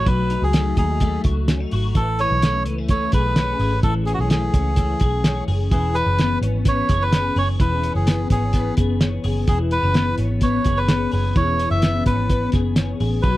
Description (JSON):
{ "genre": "jangly indie pop", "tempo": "128 BPM", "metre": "4/4", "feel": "straight", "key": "E major", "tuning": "A4 = 441 Hz", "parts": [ { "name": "melodica", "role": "melody", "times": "0.0-13.4 s", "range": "F#4 to E5", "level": "-23 LUFS", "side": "right 1 dB", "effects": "none" }, { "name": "twelve-string electric guitar", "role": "arpeggios", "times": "0.0-13.4 s", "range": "E3 to G#4", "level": "-24 LUFS", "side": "left 4 dB", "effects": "ensemble chorus, slapback echo" }, { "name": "vintage muted picked electric bass", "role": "bass", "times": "0.0-13.4 s", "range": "E1 to D#2", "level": "-22 LUFS", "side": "equal", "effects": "none" }, { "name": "cloth-damped thuddy drum kit", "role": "drums", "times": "0.1-13.3 s", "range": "hi-hat, kick drum, snare drum", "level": "-19 LUFS", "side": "equal", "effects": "none" } ], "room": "little or no reverb", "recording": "dry, close 1970s-style studio recording", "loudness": "-17 LUFS", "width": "side -16 dB against mid", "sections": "0.0-13.4 A section", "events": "none", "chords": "0.0 B7; 1.9 Amaj7; 5.7 E6" }